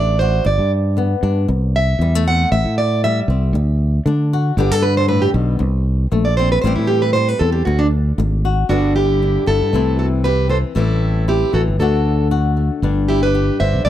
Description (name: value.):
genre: highlife guitar band.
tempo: 117 BPM.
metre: 4/4.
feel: swing 54% on 16ths.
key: G major.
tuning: A4 = 440 Hz.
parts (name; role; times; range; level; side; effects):
picked plugged-in steel-string acoustic guitar; melody; 0.0-13.9 s; D4 to F#5; -19 LUFS; right 2 dB; none.
flamenco guitar; accompaniment; 0.0-13.9 s; G2 to G4; -22 LUFS; left 6 dB; none.
fingered electric bass; bass; 0.0-13.9 s; G1 to D3; -17 LUFS; equal; none.
room: studio reverb.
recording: dry, close 1970s-style studio recording.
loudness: -14 LUFS.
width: side -12 dB against mid.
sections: 0.0-8.7 A section; 8.7-13.9 B section.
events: steel-string acoustic guitar solo 0.0-8.7.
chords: 0.5 G; 1.5 C6; 2.5 Am7; 3.5 D; 4.6 G; 5.6 C6; 6.6 Am7; 7.7 D; 8.7 G; 9.7 C6; 10.8 Am7; 11.8 D; 12.8 G.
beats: | 0.46 0.98 1.49 2.00 | 2.52 3.03 3.55 4.06 | 4.58 5.09 5.61 6.12 | 6.63 7.15 7.66 8.18 | 8.69 9.21 9.72 10.24 | 10.76 11.27 11.79 12.30 | 12.82 13.34 13.85.